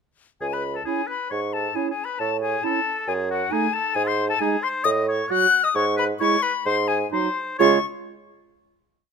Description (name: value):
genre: quick classical-period movement for wind quintet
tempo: 133 BPM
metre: 4/4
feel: straight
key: C# minor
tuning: A4 = 440 Hz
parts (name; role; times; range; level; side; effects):
- bright concert flute; melody; 0.4-7.9 s; F#5 to F#6; -24 LUFS; left 8 dB; none
- warm oboe; second line; 0.4-7.8 s; F#4 to F#5; -28 LUFS; left 2 dB; none
- mellow bassoon; bass; 0.4-7.8 s; C#2 to C#3; -25 LUFS; right 4 dB; none
- clear clarinet; accompaniment; 0.9-7.8 s; D#4 to F#4; -24 LUFS; right 13 dB; none
- warm French horn; accompaniment; 0.9-7.8 s; F#3 to C#4; -29 LUFS; right 2 dB; none
room: light reverb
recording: close, detailed microphones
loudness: -20 LUFS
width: side -6 dB against mid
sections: 0.4-7.6 A section; 7.6-9.1 final chord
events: none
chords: 0.4 C#m; 2.2 A; 3.1 D#dim/F#; 4.0 G#5; 4.9 F#m/A; 5.8 G#madd11; 6.7 G#7; 7.6 C#